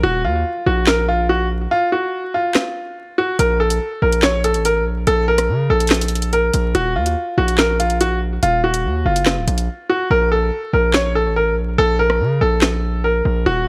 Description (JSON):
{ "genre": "hip hop, drill", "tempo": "143 BPM", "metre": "4/4", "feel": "half-time", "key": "unclear", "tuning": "A4 = 440 Hz", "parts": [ { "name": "bright concert grand piano", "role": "melody", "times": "0.0-13.6 s", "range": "F4 to Db5", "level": "-20 LUFS", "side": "equal", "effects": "low-pass filter" }, { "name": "distorted 808-style bass", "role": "bass", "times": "0.0-13.7 s", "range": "Db1 to Db3", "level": "-22 LUFS", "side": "equal", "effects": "distortion" }, { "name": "drill drum kit", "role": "drums", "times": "0.9-12.7 s", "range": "handclaps, hi-hat, rim click, snare drum", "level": "-21 LUFS", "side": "equal", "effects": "overdrive" } ], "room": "digital ambience", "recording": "vinyl crackle", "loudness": "-18 LUFS", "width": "mono", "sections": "0.0-13.7 A section", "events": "break 0.0-3.4, 9.7-10.1; hi-hats muted 10.1-13.7", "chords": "0.0 Ebmadd9; 3.4 N.C.; 6.7 Ebmadd9; 10.1 N.C." }